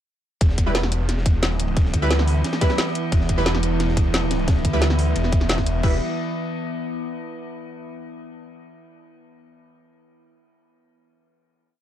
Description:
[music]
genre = dark technical drum and bass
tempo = 177 BPM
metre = 4/4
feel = straight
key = E minor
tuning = A4 = 439 Hz
[part]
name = metallic inharmonic drone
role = sustained chords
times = 0.9-6.0 s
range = E3 to E4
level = -28 LUFS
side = equal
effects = chorus, built-in reverb, sidechain pumping
[part]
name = snarling distorted saw bass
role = bass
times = 0.4-6.0 s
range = E1 to D2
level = -22 LUFS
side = equal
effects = overdrive, sidechain pumping
[part]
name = crunchy breakbeat drum kit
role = drums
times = 0.4-5.7 s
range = ride cymbal, snare drum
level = -34 LUFS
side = equal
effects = none
[part]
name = drum and bass drum kit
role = drums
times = 0.4-5.9 s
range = crash cymbal, hi-hat, snare drum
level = -25 LUFS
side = equal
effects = none
[part]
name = electronic kick drum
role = drums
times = 0.4-5.9 s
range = none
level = -20 LUFS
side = equal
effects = none
[part]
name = orchestra-hit-like synth stab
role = stabs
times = 0.7-6.0 s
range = G3 to B4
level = -27 LUFS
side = right 2 dB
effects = built-in reverb, digital delay
[sound]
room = light reverb, digital ambience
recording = dark, warm production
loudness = -19 LUFS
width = side -11 dB against mid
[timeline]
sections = 0.4-5.8 drop; 5.8-7.2 final chord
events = drop 0.4-5.8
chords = 0.4 Em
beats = | 0.41 0.75 1.09 1.43 | 1.77 2.10 2.44 2.78 | 3.12 3.46 3.80 4.14 | 4.48 4.82 5.16 5.50 | 5.83

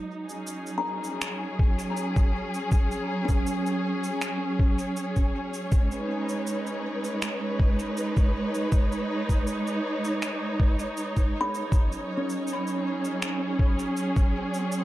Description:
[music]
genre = ambient dub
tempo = 80 BPM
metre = 4/4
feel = straight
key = unclear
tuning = A4 = 441 Hz
[part]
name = warm studio string section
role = sustained chords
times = 0.0-14.8 s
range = F#3 to C#5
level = -28 LUFS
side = right 1 dB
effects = none
[part]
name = electronic cabasa and finger snaps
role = drums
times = 0.3-14.8 s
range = none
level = -36 LUFS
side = right 1 dB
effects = overdrive, dub echo
[part]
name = kalimba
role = arpeggios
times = 0.8-6.2, 11.4-14.8 s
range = C#4 to B5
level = -33 LUFS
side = equal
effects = tape echo
[part]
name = electronic kick drum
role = drums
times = 1.6-14.3 s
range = none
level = -22 LUFS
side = equal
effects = none
[sound]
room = light reverb, digital ambience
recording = dark, warm production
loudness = -24 LUFS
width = side -15 dB against mid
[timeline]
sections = 0.0-14.8 A section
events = none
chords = 0.0 F#69; 5.7 G#m; 11.7 F#sus2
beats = 0.47 1.22 1.97 | 2.72 3.47 4.22 4.97 | 5.72 6.47 7.22 7.97 | 8.72 9.47 10.22 10.97 | 11.72 12.47 13.22 13.97 | 14.72

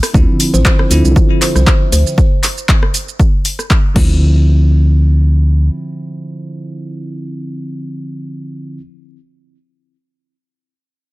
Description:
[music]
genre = deep house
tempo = 118 BPM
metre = 4/4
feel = swing 55% on 16ths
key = D minor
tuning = A4 = 440 Hz
[part]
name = punchy analog drum machine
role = drums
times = 0.0-4.1 s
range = crash cymbal, handclaps, hi-hat, rim click, shaker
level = -18 LUFS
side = equal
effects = overdrive
[part]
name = barky tine electric piano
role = stabs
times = 0.1-8.8 s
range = D3 to E4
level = -19 LUFS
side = right 1 dB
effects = phaser, sidechain pumping, ping-pong delay
[part]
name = organ-like FM bass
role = bass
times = 0.1-5.7 s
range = A1 to D2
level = -10 LUFS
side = equal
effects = tube saturation, sidechain pumping
[part]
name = electronic kick drum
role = drums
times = 0.1-4.1 s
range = none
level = -11 LUFS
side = equal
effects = overdrive
[part]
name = buzzing kalimba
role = melody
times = 0.5-2.1 s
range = C5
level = -23 LUFS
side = right 1 dB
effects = tape echo
[sound]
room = digital ambience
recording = none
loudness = -9 LUFS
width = side -20 dB against mid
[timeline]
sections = 0.1-4.2 A section; 4.2-8.3 B section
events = none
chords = 0.1 Dm9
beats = | 0.14 0.65 1.16 1.67 | 2.18 2.69 3.19 3.70 | 4.21 4.72 5.23 5.74 | 6.25 6.75 7.26 7.77

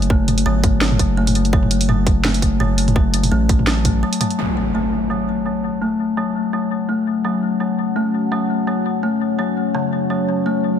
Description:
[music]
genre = half-time drum and bass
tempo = 168 BPM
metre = 4/4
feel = swing 55% on 16ths, half-time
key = F# minor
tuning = A4 = 441 Hz
[part]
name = kalimba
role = arpeggios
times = 0.0-10.8 s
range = C#3 to A3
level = -19 LUFS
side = left 3 dB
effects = low-pass filter, ping-pong delay
[part]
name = long sustained 808-style bass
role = bass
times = 0.0-4.0 s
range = F#1 to A1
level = -19 LUFS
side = right 1 dB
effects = tube saturation
[part]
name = drum and bass drum kit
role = drums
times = 0.0-4.4 s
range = hi-hat, snare drum, toms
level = -21 LUFS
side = right 2 dB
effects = low-pass filter on hats, low-pass filter on toms, low-pass filter on snare
[part]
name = electronic kick drum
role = drums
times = 0.1-3.9 s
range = none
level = -17 LUFS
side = equal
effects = none
[part]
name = deep dark ambient pad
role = sustained chords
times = 6.1-10.8 s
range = F#3 to F#5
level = -24 LUFS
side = left 1 dB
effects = chorus, built-in reverb, vintage 12-bit sampler grit, sidechain pumping
[part]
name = impact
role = sound effects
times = 4.4-5.8 s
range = none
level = -26 LUFS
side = equal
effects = none
[sound]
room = light reverb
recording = none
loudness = -16 LUFS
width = side -8 dB against mid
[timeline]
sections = 0.0-4.4 A section; 4.4-10.8 B section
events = break 4.0-4.4; impact 4.4-5.8; filter sweep on kalimba 4.4-10.8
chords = 0.0 F#5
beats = | 0.10 0.46 0.82 1.17 | 1.53 1.89 2.25 2.60 | 2.96 3.32 3.67 4.03 | 4.39 4.75 5.10 5.46 | 5.82 6.17 6.53 6.89 | 7.25 7.60 7.96 8.32 | 8.67 9.03 9.39 9.74 | 10.10 10.46

